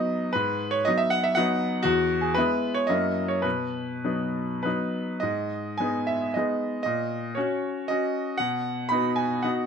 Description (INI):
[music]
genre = classical, romantic triple-time dance for piano with dotted rhythms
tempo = 96-127 BPM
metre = 3/4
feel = rubato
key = B major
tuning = A4 = 440 Hz
[part]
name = bright baby grand piano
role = solo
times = 0.0-9.7 s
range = E2 to B5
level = -24 LUFS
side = equal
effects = none
[sound]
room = light reverb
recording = none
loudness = -24 LUFS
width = side -6 dB against mid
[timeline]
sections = 0.0-5.2 A section; 5.2-9.7 B section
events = none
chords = 0.3 G#m7; 1.9 E; 2.9 F#7; 3.4 B; 5.2 G#m; 6.8 F#/A#; 8.4 B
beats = | 0.34 0.86 1.37 | 1.86 2.36 2.90 | 3.45 4.04 4.65 | 5.23 5.79 6.34 | 6.84 7.36 7.89 | 8.40 8.91 9.44